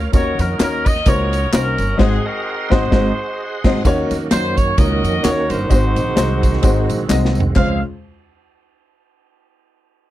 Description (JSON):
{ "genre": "uptempo gospel", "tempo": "129 BPM", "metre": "4/4", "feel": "swing 56% on 8ths", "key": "unclear", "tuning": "A4 = 439 Hz", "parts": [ { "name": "clear horn section", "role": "melody", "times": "0.0-7.8 s", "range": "C4 to F5", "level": "-22 LUFS", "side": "equal", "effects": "none" }, { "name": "bright tonewheel organ", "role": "sustained chords", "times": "0.0-7.8 s", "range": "Eb3 to C6", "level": "-25 LUFS", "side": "right 5 dB", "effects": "overdrive, chorus vibrato, slow rotary speaker" }, { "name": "upright bass", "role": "bass", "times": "0.0-7.8 s", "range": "G1 to Gb2", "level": "-20 LUFS", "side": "equal", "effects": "none" }, { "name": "warm baby grand piano", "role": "accompaniment", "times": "0.1-7.8 s", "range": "Db2 to Eb5", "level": "-21 LUFS", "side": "left 3 dB", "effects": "none" }, { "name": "modern studio drum kit", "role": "drums", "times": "0.1-7.7 s", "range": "crash cymbal, kick drum, ride cymbal, snare drum, toms", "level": "-17 LUFS", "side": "equal", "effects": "none" }, { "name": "tambourine and handclaps", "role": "percussion", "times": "0.1-7.8 s", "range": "none", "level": "-31 LUFS", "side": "left 1 dB", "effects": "none" } ], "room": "little or no reverb", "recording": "dry, close 1970s-style studio recording", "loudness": "-14 LUFS", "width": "side -14 dB against mid", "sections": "0.0-3.8 A section; 3.8-7.6 B section; 7.6-9.4 C section", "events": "band accent 2.0-3.8; drum fill 7.1-7.6", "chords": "0.1 Ebm7; 2.0 Ab7; 3.8 Ebm7; 5.7 Ab7; 7.6 Dbmaj7" }